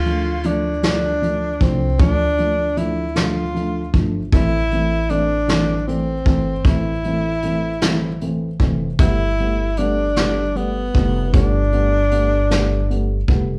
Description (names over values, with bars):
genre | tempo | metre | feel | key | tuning
six-eight pop ballad | 51 BPM (dotted quarters) | 6/8 | straight | A minor | A4 = 440 Hz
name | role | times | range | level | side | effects
breathy tenor saxophone | melody | 0.0-13.3 s | B3 to F4 | -24 LUFS | equal | none
upright bass | bass | 0.0-13.6 s | F1 to D2 | -25 LUFS | equal | none
vintage brush drum kit | drums | 0.0-13.5 s | hi-hat, kick drum, snare drum | -21 LUFS | equal | none
felt-muted upright piano | accompaniment | 0.1-13.5 s | E3 to D4 | -25 LUFS | equal | none
room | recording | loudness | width
moderate large studio reverb, RT60 0.8 s | band playing live in one room | -19 LUFS | mono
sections
0.0-13.6 A section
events
none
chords
0.0 Dm; 4.3 Am; 9.0 Gadd9